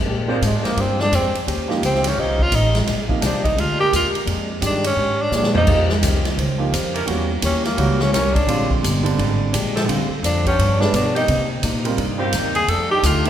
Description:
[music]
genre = jazz, big band swing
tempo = 171 BPM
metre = 4/4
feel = swing 63% on 8ths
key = Bb major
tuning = A4 = 440 Hz
[part]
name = upright bass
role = bass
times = 0.0-13.3 s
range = G1 to C3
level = -22 LUFS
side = equal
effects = none
[part]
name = picked plugged-in swing-style acoustic guitar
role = accompaniment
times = 0.1-13.3 s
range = F2 to C5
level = -28 LUFS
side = left 3 dB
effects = none
[part]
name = swinging big-band drum kit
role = drums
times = 0.1-13.3 s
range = crash cymbal, hi-hat, kick drum, ride cymbal, snare drum, toms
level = -23 LUFS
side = equal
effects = none
[part]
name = warm grand piano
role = accompaniment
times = 0.3-13.3 s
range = C3 to D5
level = -25 LUFS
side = right 4 dB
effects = none
[part]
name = mellow saxophone section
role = sustained chords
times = 0.3-13.3 s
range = Eb3 to C5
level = -29 LUFS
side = equal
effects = none
[part]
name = breathy tenor saxophone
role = melody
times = 0.5-13.3 s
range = Ab3 to A4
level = -21 LUFS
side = equal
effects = none
[sound]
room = moderate scoring stage reverb, RT60 1.7 s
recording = recorded in a church or concert hall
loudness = -16 LUFS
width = side -10 dB against mid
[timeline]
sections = 0.1-13.3 A section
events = tenor saxophone solo 0.1-13.3; drum fill 5.3-5.7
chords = 0.1 Bb13; 1.5 Eb13; 2.9 Bb13; 5.7 Eb13; 7.1 Edim7; 8.5 Bb13; 9.9 Dm7; 10.6 G7; 11.3 Cm7; 12.7 F13

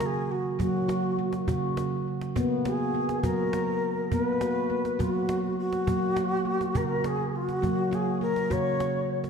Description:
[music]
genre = world meditative, meditative tuned percussion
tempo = 68 BPM (dotted quarters)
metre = 6/8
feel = straight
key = unclear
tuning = A4 = 439 Hz
[part]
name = mellow Native American-style cedar flute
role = melody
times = 0.0-9.2 s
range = Gb4 to Db5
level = -29 LUFS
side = left 1 dB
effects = ping-pong delay
[part]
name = handpan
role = arpeggios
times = 0.0-9.3 s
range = Db3 to Gb4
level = -28 LUFS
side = right 1 dB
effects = ping-pong delay
[part]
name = cajon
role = percussion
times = 0.0-9.3 s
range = none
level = -35 LUFS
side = right 2 dB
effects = none
[sound]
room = wet scoring stage reverb, RT60 2.0 s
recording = dark, warm production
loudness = -25 LUFS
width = side -6 dB against mid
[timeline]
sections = 0.0-9.3 A section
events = none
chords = 0.0 Gb; 2.4 B5; 5.9 Gb

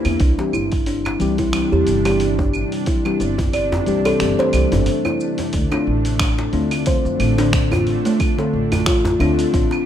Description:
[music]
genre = organic downtempo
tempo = 90 BPM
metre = 4/4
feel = swing 56% on 16ths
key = D minor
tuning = A4 = 440 Hz
[part]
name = muted felt-like synth keys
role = accompaniment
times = 0.0-9.8 s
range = D3 to G4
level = -24 LUFS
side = left 4 dB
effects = chorus, sidechain pumping, ping-pong delay
[part]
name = bowed-like drone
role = sustained chords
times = 0.0-9.9 s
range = C3 to E4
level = -26 LUFS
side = right 1 dB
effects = built-in reverb, sidechain pumping
[part]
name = dusty soul sampler-style drum kit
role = drums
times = 0.0-9.8 s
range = cabasa, claves, finger snaps, hi-hat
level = -27 LUFS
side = right 2 dB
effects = none
[part]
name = upright bass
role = bass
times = 0.1-9.6 s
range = G1 to F2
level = -22 LUFS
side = right 1 dB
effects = none
[part]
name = djembe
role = percussion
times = 0.1-9.8 s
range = none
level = -27 LUFS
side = equal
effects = none
[part]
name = kalimba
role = arpeggios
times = 0.2-9.7 s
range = A3 to D5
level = -21 LUFS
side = equal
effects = ping-pong delay
[part]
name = electronic kick drum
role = drums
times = 0.2-9.7 s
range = none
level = -21 LUFS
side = right 1 dB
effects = none
[sound]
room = light reverb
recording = rough home demo mix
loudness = -16 LUFS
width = side -10 dB against mid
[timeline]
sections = 0.0-5.5 A section; 5.5-9.9 B section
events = break 4.9-5.5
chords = 0.2 C; 5.5 Dm7

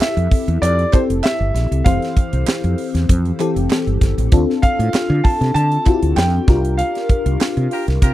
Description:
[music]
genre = polished 1980s jazz-funk pop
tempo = 97 BPM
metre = 4/4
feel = swing 54% on 16ths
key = unclear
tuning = A4 = 440 Hz
[part]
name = warm baby grand piano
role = melody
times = 0.0-8.0 s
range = C5 to A5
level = -22 LUFS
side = right 1 dB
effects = slapback echo
[part]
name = FM electric piano with soft pad layer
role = accompaniment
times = 0.0-8.1 s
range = E3 to C5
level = -21 LUFS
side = left 3 dB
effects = ensemble chorus
[part]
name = mellow fretless electric bass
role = bass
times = 0.0-8.1 s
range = F1 to D3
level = -17 LUFS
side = equal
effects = none
[part]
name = crisp fusion drum kit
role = drums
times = 0.0-8.1 s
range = hi-hat, kick drum, snare drum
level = -15 LUFS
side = equal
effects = none
[part]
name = group handclap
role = percussion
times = 0.0-7.6 s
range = none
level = -29 LUFS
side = right 13 dB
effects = none
[part]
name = warm horn section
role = second line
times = 7.7-8.1 s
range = F4 to Bb4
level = -23 LUFS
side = right 2 dB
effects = none
[sound]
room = little or no reverb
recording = dry, close 1970s-style studio recording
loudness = -14 LUFS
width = side -14 dB against mid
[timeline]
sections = 0.0-8.1 A section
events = band accent 6.8-8.1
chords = 0.0 Fmaj7; 4.3 Dm7; 6.5 C7sus4

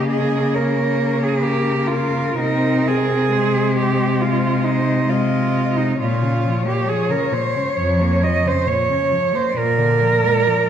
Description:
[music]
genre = classical, lyrical piece for cello ensemble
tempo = 67 BPM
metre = 4/4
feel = rubato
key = Ab major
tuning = A4 = 439 Hz
[part]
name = warm cello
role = melody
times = 0.0-10.7 s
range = Bb4 to Eb5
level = -27 LUFS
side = left 6 dB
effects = none
[part]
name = rich cello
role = second line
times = 0.0-10.7 s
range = Eb4 to Eb5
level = -20 LUFS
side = right 4 dB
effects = none
[part]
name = clear cello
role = accompaniment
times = 0.0-10.7 s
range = Bb2 to C4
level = -24 LUFS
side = left 4 dB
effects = none
[part]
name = rich cello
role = bass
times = 0.0-10.3 s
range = F2 to Db3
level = -21 LUFS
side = equal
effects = none
[sound]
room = wet scoring stage reverb, RT60 1.5 s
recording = dark, warm production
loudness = -16 LUFS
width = side -9 dB against mid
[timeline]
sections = 0.0-10.7 A section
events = none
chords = 0.0 Eb7/Db; 2.4 Ab/C; 6.0 Bbm; 9.6 Bb7

